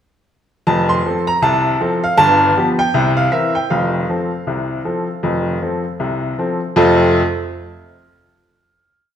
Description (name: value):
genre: ragtime piano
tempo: 79 BPM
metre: 2/4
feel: swing 59% on 16ths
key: F major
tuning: A4 = 440 Hz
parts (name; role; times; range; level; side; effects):
- bright upright piano; solo; 0.7-7.2 s; F1 to C6; -14 LUFS; equal; none
room: wet recital hall reverb, RT60 1.4 s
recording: recorded in a church or concert hall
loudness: -14 LUFS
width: side -9 dB against mid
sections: 0.7-6.8 A section; 6.8-8.3 final chord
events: none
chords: 0.7 F; 2.2 G7; 3.0 C7; 3.7 F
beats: | 0.67 1.43 | 2.19 2.95 | 3.71 4.47 | 5.24 6.00 | 6.76